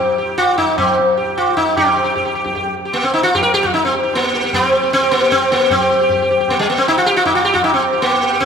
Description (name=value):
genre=indian classical, Hindustani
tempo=153 BPM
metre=5/4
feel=straight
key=G raga malkauns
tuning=A4 = 440 Hz
part: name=sitar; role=melody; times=0.0-8.5 s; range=G3 to Bb4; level=-14 LUFS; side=equal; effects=none
part: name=tabla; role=percussion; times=0.4-8.5 s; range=none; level=-20 LUFS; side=right 1 dB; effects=none
room=wet church reverb, RT60 3.0 s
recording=recorded in a church or concert hall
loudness=-13 LUFS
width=side -6 dB against mid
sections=0.0-1.8 A section; 1.8-8.5 B section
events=speeding up 0.0-8.5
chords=none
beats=0.18 0.58 0.97 1.37 | 1.77 2.16 2.56 2.95 3.35 | 3.74 4.13 4.53 4.92 5.31 | 5.70 6.09 6.48 6.87 7.26 | 7.64 8.03 8.42